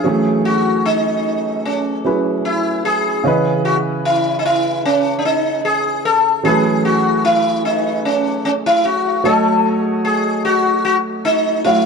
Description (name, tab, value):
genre	R&B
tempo	75 BPM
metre	4/4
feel	swing 54% on 16ths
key	C# minor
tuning	A4 = 440 Hz
part	sitar	melody	0.0-11.9 s	C#4 to A4	-16 LUFS	left 1 dB	none
part	warm concert grand piano	accompaniment	0.0-11.9 s	C#3 to F#5	-18 LUFS	right 2 dB	none
room	moderate plate reverb, RT60 2.6 s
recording	dark, warm production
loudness	-14 LUFS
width	side -5 dB against mid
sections	0.0-3.2 A section; 3.2-11.9 B section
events	none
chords	0.0 F#m9; 3.2 C#m9; 6.4 F#m11; 9.2 D#m7b5/F#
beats	| 0.05 0.85 1.65 2.45 | 3.25 4.05 4.85 5.65 | 6.45 7.25 8.05 8.85 | 9.65 10.45 11.25